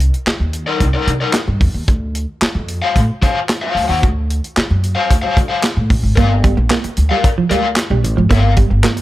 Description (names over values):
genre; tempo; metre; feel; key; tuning
funk; 112 BPM; 4/4; straight; unclear; A4 = 441 Hz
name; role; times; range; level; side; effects
upright bass; bass; 0.0-9.0 s; G1 to D3; -16 LUFS; equal; none
tight funk drum kit; drums; 0.0-9.0 s; handclaps, hi-hat, kick drum, snare drum; -16 LUFS; equal; none
raw garage guitar; accompaniment; 0.7-8.5 s; Eb4 to F#5; -19 LUFS; left 4 dB; overdrive, harmonic tremolo
semi-hollow electric guitar; riff; 6.2-9.0 s; F3 to Bb3; -19 LUFS; right 6 dB; none
room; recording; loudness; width
small room ambience; none; -13 LUFS; side -16 dB against mid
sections
0.0-6.2 A section; 6.2-9.0 B section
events
none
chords
0.0 Cm9; 1.9 D7#9; 6.2 Gm7